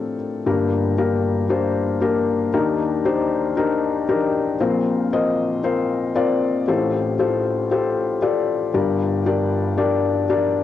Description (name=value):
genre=pop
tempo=116 BPM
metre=4/4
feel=straight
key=unclear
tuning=A4 = 440 Hz
part: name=felt-muted upright piano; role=solo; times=0.0-10.6 s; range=G1 to Eb5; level=-18 LUFS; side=left 3 dB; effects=cassette tape, tape echo
room=moderate studio reverb, RT60 0.6 s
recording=home recording on cassette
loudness=-18 LUFS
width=side -11 dB against mid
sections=0.5-10.6 A section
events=none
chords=0.5 Gm; 2.5 Ebmaj7; 4.6 Bbsus2; 6.7 Fadd9/A; 8.7 Gm